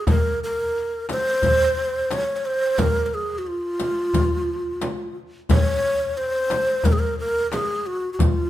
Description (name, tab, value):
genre	Turkish makam ensemble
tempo	89 BPM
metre	4/4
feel	straight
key	Bb makam nihavent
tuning	A4 = 440 Hz
part	breathy low ney	melody	0.0-8.5 s	F4 to Db5	-22 LUFS	right 1 dB	none
part	darbuka	percussion	0.1-8.4 s	none	-24 LUFS	left 2 dB	none
part	frame drum	percussion	0.1-8.4 s	none	-26 LUFS	right 2 dB	none
part	riq	percussion	0.1-8.4 s	none	-31 LUFS	left 6 dB	none
room	moderate recital hall reverb, RT60 1.4 s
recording	minimal, uncompressed stereo recording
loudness	-20 LUFS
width	side -13 dB against mid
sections	0.1-8.5 A section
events	none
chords	none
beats	| 0.08 0.76 1.43 2.11 | 2.79 3.46 4.14 4.82 | 5.49 6.17 6.85 7.52 | 8.20